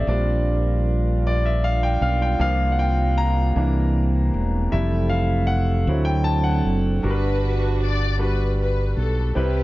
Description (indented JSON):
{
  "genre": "slow gospel",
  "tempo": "52 BPM (dotted quarters)",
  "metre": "6/8",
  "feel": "straight",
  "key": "unclear",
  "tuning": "A4 = 441 Hz",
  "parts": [
    { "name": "clear concert grand piano", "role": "accompaniment", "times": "0.0-9.6 s", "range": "G2 to Bb5", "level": "-24 LUFS", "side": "left 1 dB", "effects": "none" },
    { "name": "mellow tonewheel organ", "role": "sustained chords", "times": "0.0-7.1 s", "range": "E3 to Bb4", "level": "-29 LUFS", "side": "right 2 dB", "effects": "slow rotary speaker" },
    { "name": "warm French horn section", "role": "sustained chords", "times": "0.0-7.0 s", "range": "C3 to G4", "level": "-36 LUFS", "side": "right 1 dB", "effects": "none" },
    { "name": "fingered electric bass", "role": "bass", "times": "0.0-9.6 s", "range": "E1 to D2", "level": "-21 LUFS", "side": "equal", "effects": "none" },
    { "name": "dark symphonic string section", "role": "melody", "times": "7.1-9.6 s", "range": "D4 to D5", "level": "-27 LUFS", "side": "equal", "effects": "none" }
  ],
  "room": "light reverb, small room ambience",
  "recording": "dark, warm production, nothing above 7.5 kHz",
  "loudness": "-19 LUFS",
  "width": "side -18 dB against mid",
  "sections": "0.0-7.0 A section; 7.0-9.6 B section",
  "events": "grand piano solo 0.0-7.0",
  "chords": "0.1 Bb6; 2.4 C7sus4; 3.6 C7; 4.7 Fmaj7; 5.9 D7; 7.0 Gmaj7",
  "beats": "| 0.09 1.25 | 2.41 3.57 | 4.73 5.89 | 7.05 8.21 | 9.36"
}